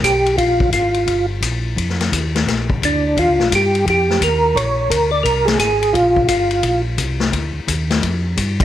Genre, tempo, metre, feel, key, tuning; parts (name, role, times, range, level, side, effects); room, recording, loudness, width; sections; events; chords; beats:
soul jazz organ trio; 173 BPM; 4/4; swing 64% on 8ths; Bb mixolydian; A4 = 441 Hz
percussive tonewheel organ; melody; 0.0-6.8 s; D4 to D5; -16 LUFS; right 1 dB; slow rotary speaker, chorus vibrato
mellow tonewheel organ; bass; 0.0-8.6 s; G1 to G2; -21 LUFS; equal; slow rotary speaker
swinging big-band drum kit; drums; 0.0-8.6 s; hi-hat, kick drum, ride cymbal, snare drum; -20 LUFS; left 3 dB
moderate spring reverb, RT60 1.7 s, small room ambience; 1960s-style stereo; -14 LUFS; side -12 dB against mid
0.0-8.6 A section
0.4 Bb5; 1.8 Ebsus2; 2.5 Bb; 3.2 Eb9; 4.6 Bb13; 7.3 G5
0.04 | 0.38 0.73 1.08 1.42 | 1.77 2.12 2.47 2.81 | 3.16 3.51 3.86 4.20 | 4.55 4.90 5.25 5.59 | 5.94 6.29 6.64 6.99 | 7.33 7.68 8.03 8.38